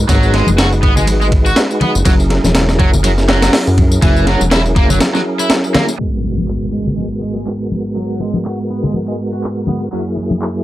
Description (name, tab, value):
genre	breakbeat, breaks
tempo	122 BPM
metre	4/4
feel	swing 57% on 16ths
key	G# minor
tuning	A4 = 440 Hz
part	percussive tonewheel organ	sustained chords	0.0-10.6 s	F#2 to B4	-19 LUFS	equal	chorus vibrato, fast rotary speaker, sidechain pumping, low-pass filter
part	fat analog bass	bass	0.0-5.0 s	E1 to F#2	-14 LUFS	equal	none
part	cranked stack guitar	riff	0.1-10.0 s	E3 to F#4	-20 LUFS	right 1 dB	overdrive, tube saturation, low-pass filter, tape echo
part	breakbeat sampler-style drum kit	drums	0.1-5.9 s	hi-hat, kick drum, ride cymbal, snare drum	-14 LUFS	equal	none
part	electronic tambourine and handclaps	drums	0.1-10.5 s	none	-26 LUFS	left 4 dB	none
part	congas	percussion	0.5-10.4 s	none	-19 LUFS	left 2 dB	none
part	impact	sound effects	6.0-8.0 s	none	-23 LUFS	equal	none
room	light reverb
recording	dry, gritty hardware recording, cassette tape, low-pass filter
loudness	-12 LUFS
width	side -15 dB against mid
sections	0.0-6.0 A section; 6.0-10.6 B section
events	break 5.0-6.0; impact 6.0-8.0; filter sweep on tonewheel organ 6.0-10.6; filter sweep 6.0-10.6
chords	0.0 G#m7; 2.1 F#7; 6.0 G#m7; 9.9 F#7